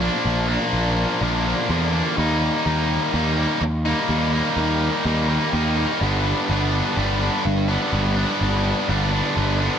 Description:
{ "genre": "post-rock", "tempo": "62 BPM", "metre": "4/4", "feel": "straight", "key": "unclear", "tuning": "A4 = 440 Hz", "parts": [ { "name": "tight distorted guitar", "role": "riff", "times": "0.0-9.8 s", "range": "G2 to Eb4", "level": "-21 LUFS", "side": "equal", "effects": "distortion" }, { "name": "fuzz picked electric bass", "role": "bass", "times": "0.0-9.7 s", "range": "G1 to E2", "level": "-23 LUFS", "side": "equal", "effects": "overdrive" } ], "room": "light reverb", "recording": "none", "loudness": "-18 LUFS", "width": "side -8 dB against mid", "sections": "0.0-9.8 A section", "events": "none", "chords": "0.0 Bb; 2.2 Eb; 6.0 G", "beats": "0.24 1.21 | 2.17 3.13 4.09 5.05 | 6.01 6.97 7.93 8.88" }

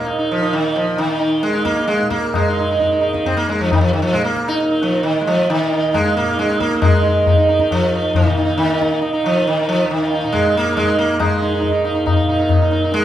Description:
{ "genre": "indian classical, Hindustani", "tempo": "135 BPM", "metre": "5/4", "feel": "straight", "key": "unclear", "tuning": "A4 = 440 Hz", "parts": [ { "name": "sitar", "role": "melody", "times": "0.0-13.0 s", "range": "Eb3 to Eb4", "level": "-16 LUFS", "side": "right 1 dB", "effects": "none" }, { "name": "tanpura", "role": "drone", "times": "0.0-13.0 s", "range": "Eb2 to Eb3", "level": "-26 LUFS", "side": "right 3 dB", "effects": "none" }, { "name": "tabla", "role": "percussion", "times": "0.1-13.0 s", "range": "none", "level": "-21 LUFS", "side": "left 3 dB", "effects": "none" } ], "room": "wet large studio reverb, RT60 0.8 s", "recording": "band playing live in one room", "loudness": "-14 LUFS", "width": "side -11 dB against mid", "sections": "0.0-13.0 A section", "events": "speeding up 0.0-13.0", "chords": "none", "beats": "| 0.06 0.52 0.98 1.44 1.90 | 2.35 2.81 3.26 3.71 4.16 | 4.61 5.06 5.50 5.95 6.39 | 6.84 7.28 7.72 8.16 8.60 | 9.04 9.48 9.91 10.35 10.78 | 11.21 11.64 12.07 12.50 12.93" }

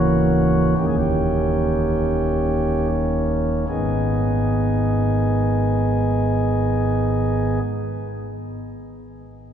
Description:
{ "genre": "classical, chorale-style piece for pipe organ", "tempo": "free time", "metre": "none", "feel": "none", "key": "G# minor", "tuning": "A4 = 440 Hz", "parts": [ { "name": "pipe organ, flutes", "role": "solo", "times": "0.0-7.6 s", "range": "C#1 to G#4", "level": "-18 LUFS", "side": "equal", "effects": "none" } ], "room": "wet cathedral reverb, RT60 5.0 s", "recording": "minimal, uncompressed stereo recording", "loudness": "-18 LUFS", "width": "side -8 dB against mid", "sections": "0.0-3.7 A section; 3.7-9.5 B section", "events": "slowing down 0.0-3.7", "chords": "0.0 A#dim/C#; 0.8 D#7; 3.7 G#m", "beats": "free time" }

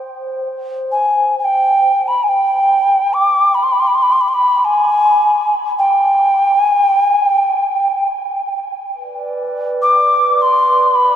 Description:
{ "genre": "world meditative, free-time meditation music", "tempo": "free time", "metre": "none", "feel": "none", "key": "unclear", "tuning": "A4 = 441 Hz", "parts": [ { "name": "glass harmonica", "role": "texture", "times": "0.0-1.0, 8.9-11.2 s", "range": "B4 to D5", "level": "-23 LUFS", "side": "right 3 dB", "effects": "none" }, { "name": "alto ocarina", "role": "melody", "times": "0.9-11.2 s", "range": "G5 to D6", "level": "-12 LUFS", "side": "equal", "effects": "tape echo" } ], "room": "wet huge ambient reverb, RT60 7.2 s", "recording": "none", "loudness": "-12 LUFS", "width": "side -10 dB against mid", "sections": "0.0-8.5 A section; 8.5-11.2 A section", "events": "none", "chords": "none", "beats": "free time" }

